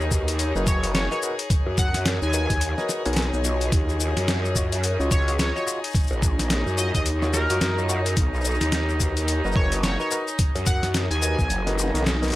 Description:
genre	glitch hop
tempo	108 BPM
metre	4/4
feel	swing 60% on 16ths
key	unclear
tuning	A4 = 442 Hz
part	growl bass	bass	0.0-12.4 s	F#1 to F#2	-24 LUFS	equal	chorus, overdrive
part	boom bap sampler-style drum kit	drums	0.0-12.3 s	hi-hat, shaker, snare drum	-27 LUFS	left 1 dB	small room ambience
part	rich chamber string section	texture	0.0-12.4 s	D#4 to Db5	-31 LUFS	left 2 dB	sidechain pumping
part	overdriven tine electric piano	stabs	0.1-12.4 s	F4 to Ab5	-31 LUFS	equal	fast tremolo, sidechain pumping, dub echo
part	electronic kick drum	drums	0.1-11.5 s	none	-23 LUFS	equal	small room ambience
part	sync lead	melody	0.7-11.7 s	Bb4 to Ab5	-30 LUFS	equal	chorus, dub echo
room	light reverb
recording	none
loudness	-20 LUFS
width	side -16 dB against mid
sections	0.0-12.4 A section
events	band accent 12.1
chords	0.0 Bmaj7; 3.7 Ebm9; 8.2 Bmaj7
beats	0.39 0.95 | 1.50 2.06 2.61 3.17 | 3.72 4.28 4.83 5.39 | 5.95 6.50 7.06 7.61 | 8.17 8.72 9.28 9.84 | 10.39 10.95 11.50 12.06

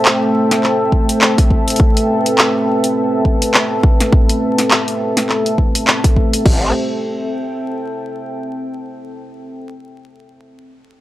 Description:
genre	glitch hop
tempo	103 BPM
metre	4/4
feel	swing 58% on 16ths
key	A minor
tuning	A4 = 440 Hz
part	dark analog pad	sustained chords	0.0-6.7 s	A3 to C5	-19 LUFS	right 1 dB	chorus, vintage 12-bit sampler grit, sidechain pumping
part	deep dark ambient pad	texture	0.0-8.7 s	C4 to G5	-20 LUFS	left 1 dB	chorus, built-in reverb, sidechain pumping
part	pop drum kit	drums	0.1-6.6 s	crash cymbal, handclaps, hi-hat, snare drum	-15 LUFS	equal	none
part	electronic kick drum	drums	0.9-6.6 s	none	-13 LUFS	equal	none
part	growl bass	bass	6.5-6.7 s	A1	-16 LUFS	equal	chorus, tube saturation
room	light reverb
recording	dry, gritty hardware recording, transformer saturation, vinyl crackle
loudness	-12 LUFS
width	side -15 dB against mid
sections	0.0-6.5 A section; 6.5-8.8 B section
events	none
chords	0.0 Am7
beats	0.05 0.63 1.21 | 1.79 2.38 2.96 3.54 | 4.12 4.71 5.29 5.87 | 6.46 7.04 7.62 8.20

